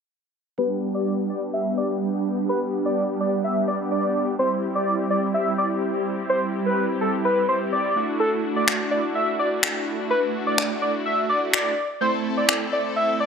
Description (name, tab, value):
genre	dance-pop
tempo	126 BPM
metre	4/4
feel	straight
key	G major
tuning	A4 = 440 Hz
part	wide unison lead	melody	0.6-13.3 s	A4 to E5	-24 LUFS	equal	low-pass filter, digital delay
part	big bright polysynth	accompaniment	0.6-13.3 s	G3 to A4	-24 LUFS	right 1 dB	chorus, low-pass filter
part	finger snaps	drums	8.7-12.6 s	none	-22 LUFS	left 1 dB	none
room	moderate plate reverb, RT60 1.3 s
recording	none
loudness	-21 LUFS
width	side -6 dB against mid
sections	0.6-13.3 A section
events	filter sweep 0.6-13.3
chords	0.6 G; 4.4 C; 8.0 Dadd9; 12.0 Am